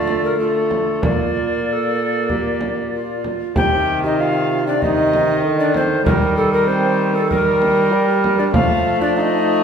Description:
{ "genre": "classical, renaissance-style consort dance", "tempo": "96 BPM", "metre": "4/4", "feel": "straight", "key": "C dorian", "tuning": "A4 = 440 Hz", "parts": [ { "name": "tenor recorder", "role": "melody", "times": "0.0-9.6 s", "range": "A4 to G5", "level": "-20 LUFS", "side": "left 3 dB", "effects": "none" }, { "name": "tenor recorder", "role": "second line", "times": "0.0-9.6 s", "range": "C4 to Bb4", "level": "-22 LUFS", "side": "right 5 dB", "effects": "none" }, { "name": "warm viola", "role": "accompaniment", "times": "0.0-9.6 s", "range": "Eb3 to Bb3", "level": "-22 LUFS", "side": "left 1 dB", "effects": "none" }, { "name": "dark bassoon", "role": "bass", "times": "0.0-9.6 s", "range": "Bb2 to G3", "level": "-23 LUFS", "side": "right 1 dB", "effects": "none" }, { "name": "frame drum", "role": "percussion", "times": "0.1-8.8 s", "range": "none", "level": "-23 LUFS", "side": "right 1 dB", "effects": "none" } ], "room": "wet recital hall reverb, RT60 1.4 s", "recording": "heard from further back in the room", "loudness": "-15 LUFS", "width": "side -7 dB against mid", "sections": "0.0-3.6 A section; 3.6-9.6 A section", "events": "none", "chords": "0.0 Dm; 1.0 Bb; 3.6 Cm; 6.1 Eb; 8.5 F", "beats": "0.39 | 1.03 1.67 2.30 2.93 | 3.56 4.19 4.81 5.44 | 6.06 6.68 7.30 7.92 | 8.54 9.16" }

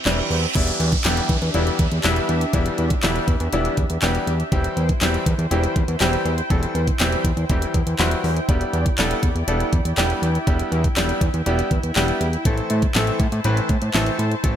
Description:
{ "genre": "dance-pop", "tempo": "121 BPM", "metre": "4/4", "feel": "straight", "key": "E minor", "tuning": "A4 = 436 Hz", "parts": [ { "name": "soft supersaw", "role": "sustained chords", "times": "0.0-14.6 s", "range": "C4 to A5", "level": "-29 LUFS", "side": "equal", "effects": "wide subtle chorus, sidechain pumping" }, { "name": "reverse cymbal and downlifter", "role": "sound effects", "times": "0.0-4.5 s", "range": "none", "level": "-29 LUFS", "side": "right 3 dB", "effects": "none" }, { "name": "bright grand piano", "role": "accompaniment", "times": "0.1-14.6 s", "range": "E3 to C6", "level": "-24 LUFS", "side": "left 1 dB", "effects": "sidechain pumping" }, { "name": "fat analog bass", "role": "bass", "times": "0.1-14.6 s", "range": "E1 to A2", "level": "-22 LUFS", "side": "equal", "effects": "sidechain pumping" }, { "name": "smooth R&B drum kit", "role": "drums", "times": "0.1-14.6 s", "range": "crash cymbal, handclaps, hi-hat, kick drum, snare drum", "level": "-22 LUFS", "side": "equal", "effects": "none" }, { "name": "group handclap", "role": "percussion", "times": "1.1-14.1 s", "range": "none", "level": "-35 LUFS", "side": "left 4 dB", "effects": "none" } ], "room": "light reverb, digital ambience", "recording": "bright 1980s-style digital production", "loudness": "-18 LUFS", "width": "side -10 dB against mid", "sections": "0.6-14.6 A section", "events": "reverse cymbal 0.0-0.6; grand piano fill 7.7-8.5", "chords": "0.0 C/E; 0.6 Em7; 4.5 C/E; 8.5 Em7; 12.5 Am", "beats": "0.06 | 0.55 1.05 1.54 2.04 | 2.54 3.03 3.53 4.02 | 4.52 5.02 5.51 6.01 | 6.50 7.00 7.50 7.99 | 8.49 8.98 9.48 9.97 | 10.47 10.97 11.46 11.96 | 12.45 12.95 13.45 13.94 | 14.44" }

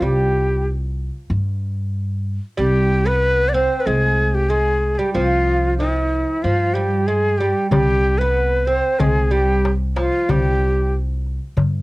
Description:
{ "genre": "Arabic maqam ensemble", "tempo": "93 BPM", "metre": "4/4", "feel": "straight", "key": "C maqam suznak", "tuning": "A4 = 440 Hz", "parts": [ { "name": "breathy bright ney", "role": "melody", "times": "0.0-10.9 s", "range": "E4-48c to D5", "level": "-19 LUFS", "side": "equal", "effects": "cassette tape" }, { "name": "oud", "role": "second line", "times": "0.0-10.9 s", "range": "E3-50c to C4", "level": "-24 LUFS", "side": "right 3 dB", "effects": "cassette tape" }, { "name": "upright bass", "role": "bass", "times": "0.0-11.8 s", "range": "C2 to G2", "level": "-20 LUFS", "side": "equal", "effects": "none" }, { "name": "darbuka", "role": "percussion", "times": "7.7-11.7 s", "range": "none", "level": "-20 LUFS", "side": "left 2 dB", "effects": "none" } ], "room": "light reverb", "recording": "home recording on cassette", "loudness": "-16 LUFS", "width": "side -21 dB against mid", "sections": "0.0-11.8 A section", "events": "none", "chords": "none", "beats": "| 0.02 0.66 1.30 1.94 | 2.59 3.23 3.87 4.51 | 5.16 5.80 6.44 7.08 | 7.73 8.37 9.01 9.65 | 10.30 10.94 11.58" }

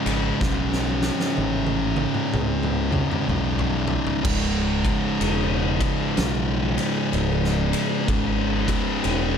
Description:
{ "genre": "stoner and doom metal", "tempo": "63 BPM", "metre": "4/4", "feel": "swing 62% on 8ths", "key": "C# minor", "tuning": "A4 = 440 Hz", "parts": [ { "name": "thick fuzz guitar", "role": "riff", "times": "0.0-9.4 s", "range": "C#2 to C#3", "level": "-23 LUFS", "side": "equal", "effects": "distortion" }, { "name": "growling fingered electric bass", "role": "bass", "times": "0.1-9.4 s", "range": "C#1 to C#2", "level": "-26 LUFS", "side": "equal", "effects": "overdrive" }, { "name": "oversized low-tuned drum kit", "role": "drums", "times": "0.1-9.3 s", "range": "crash cymbal, kick drum, ride cymbal, snare drum, toms", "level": "-26 LUFS", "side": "equal", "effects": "none" } ], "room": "light reverb, small room reverb", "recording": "none", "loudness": "-20 LUFS", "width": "side -7 dB against mid", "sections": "0.0-4.2 A section; 4.2-9.4 B section", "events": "drum fill 0.4-4.2", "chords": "0.0 C#5; 4.2 C#m", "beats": "| 0.41 1.37 2.33 3.29 | 4.25 5.20 6.16 7.12 | 8.08 9.04" }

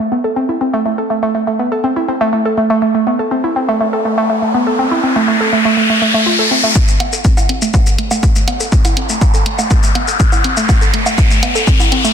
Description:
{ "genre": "melodic techno", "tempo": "122 BPM", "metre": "4/4", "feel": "straight", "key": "A minor", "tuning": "A4 = 440 Hz", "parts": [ { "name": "woody wave-folded pluck", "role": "arpeggios", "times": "0.0-12.1 s", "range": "A3 to A4", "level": "-15 LUFS", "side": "right 1 dB", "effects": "chorus, sidechain pumping, dub echo" }, { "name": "riser", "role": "sound effects", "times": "3.5-12.1 s", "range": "none", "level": "-17 LUFS", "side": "left 1 dB", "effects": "none" }, { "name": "electronic kick drum", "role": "drums", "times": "6.8-11.8 s", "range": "none", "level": "-12 LUFS", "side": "equal", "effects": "none" }, { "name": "electronic shaker, hi-hat and woodblock", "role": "drums", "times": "6.8-12.1 s", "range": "none", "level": "-19 LUFS", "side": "equal", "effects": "sidechain pumping on perc, low-pass filter on perc, sidechain pumping on hats, low-pass filter on hats, low-pass filter on room" } ], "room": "light reverb", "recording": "dense, heavily limited modern master", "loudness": "-11 LUFS", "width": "side -8 dB against mid", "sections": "0.0-6.8 A section; 6.8-12.1 B section", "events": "riser 3.5-6.8, 6.8-12.1; build-up 6.8-12.1", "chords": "none", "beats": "0.36 | 0.85 1.35 1.84 2.33 | 2.82 3.31 3.81 4.30 | 4.79 5.28 5.77 6.26 | 6.76 7.25 7.74 8.23 | 8.72 9.21 9.71 10.20 | 10.69 11.18 11.67" }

